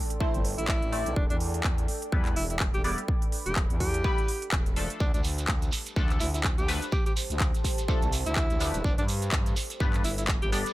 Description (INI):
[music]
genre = bass house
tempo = 125 BPM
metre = 4/4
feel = swing 57% on 16ths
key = unclear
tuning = A4 = 440 Hz
[part]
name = deep dark ambient pad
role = texture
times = 0.0-10.7 s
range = G4 to C6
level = -40 LUFS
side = right 1 dB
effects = chorus, built-in reverb, sidechain pumping
[part]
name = big-room dance drum kit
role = drums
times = 0.1-10.7 s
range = handclaps, hi-hat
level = -33 LUFS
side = equal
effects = none
[part]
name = band-passed chord stab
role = stabs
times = 0.2-10.7 s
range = F3 to D5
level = -34 LUFS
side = left 2 dB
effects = phaser, analog chorus, cassette tape, sidechain pumping, dub echo
[part]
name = electronic kick drum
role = drums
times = 0.2-10.4 s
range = none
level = -27 LUFS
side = equal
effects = none
[part]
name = growling FM bass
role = bass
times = 0.3-10.6 s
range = E1 to G2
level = -32 LUFS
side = equal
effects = tube saturation, sidechain pumping
[part]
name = breathy alto saxophone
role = melody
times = 0.6-10.6 s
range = D4 to G4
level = -34 LUFS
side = equal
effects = none
[part]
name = shekere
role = percussion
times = 5.0-10.7 s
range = none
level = -39 LUFS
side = right 4 dB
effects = none
[sound]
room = little or no reverb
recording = none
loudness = -25 LUFS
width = side -17 dB against mid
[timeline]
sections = 0.0-10.7 A section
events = none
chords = 0.0 Em; 5.0 Dm; 8.8 G